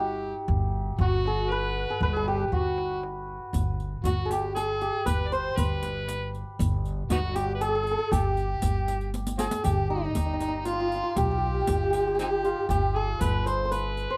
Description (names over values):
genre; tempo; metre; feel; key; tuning
Persian modal ensemble; 118 BPM; 3/4; straight; G dastgah chahargah, G dastgah homayun from 9.6 s; A4 = 440 Hz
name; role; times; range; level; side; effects
santur; melody; 0.0-14.2 s; Eb4 to C5; -32 LUFS; equal; none
overdriven harmonica; second line; 0.0-14.2 s; B3 to D5; -34 LUFS; equal; none
upright bass; bass; 0.0-14.1 s; G1 to B1; -33 LUFS; equal; none
tombak; percussion; 0.2-14.0 s; none; -34 LUFS; equal; none
riq; percussion; 3.5-14.0 s; none; -38 LUFS; equal; none
room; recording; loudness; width
little or no reverb; close, detailed microphones; -27 LUFS; mono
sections
0.0-9.6 A section; 9.6-14.2 B section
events
drum fill 9.1-9.6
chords
none